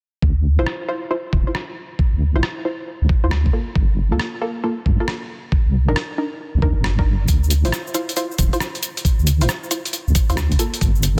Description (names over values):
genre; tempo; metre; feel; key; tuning
UK garage, two-step garage; 136 BPM; 4/4; swing 66% on 16ths; D minor; A4 = 440 Hz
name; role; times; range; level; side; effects
deep soft wobble bass; bass; 0.2-11.2 s; D1 to G2; -20 LUFS; equal; chorus, sidechain pumping
electronic kick drum; drums; 0.2-10.9 s; none; -20 LUFS; equal; small room ambience
punchy chord stab; stabs; 0.6-11.1 s; Bb3 to C5; -28 LUFS; equal; chorus, delay
boom bap sampler-style drum kit; drums; 0.7-11.1 s; hi-hat, rim click; -28 LUFS; equal; soft clipping on snare, low-pass filter on snare, small room ambience, low-pass filter on hats
cabasa; percussion; 7.3-11.1 s; none; -33 LUFS; equal; none
room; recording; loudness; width
little or no reverb; dense, heavily limited modern master; -20 LUFS; mono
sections
0.2-11.2 A section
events
filter sweep on drum 0.2-11.2; filter sweep on wobble bass 0.2-11.2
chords
0.2 Dm9; 3.5 Gm9; 5.3 Cm9; 7.3 Dm9; 10.6 Gm9